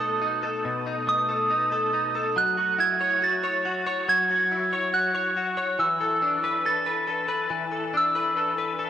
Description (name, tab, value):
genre	dream pop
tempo	70 BPM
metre	4/4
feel	straight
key	F# minor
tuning	A4 = 440 Hz
part	soft synth bell	melody	0.0-8.9 s	D#6 to A6	-23 LUFS	right 2 dB	chorus, phaser, analog delay
part	direct-recorded clean electric guitar	arpeggios	0.0-8.9 s	B2 to C#5	-28 LUFS	left 3 dB	ensemble chorus, analog delay
room	moderate shimmer reverb, RT60 6.6 s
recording	dry, gritty hardware recording, cassette tape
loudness	-22 LUFS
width	side -10 dB against mid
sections	0.0-8.9 A section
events	none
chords	0.0 B7; 2.4 F#m7; 5.8 E7sus4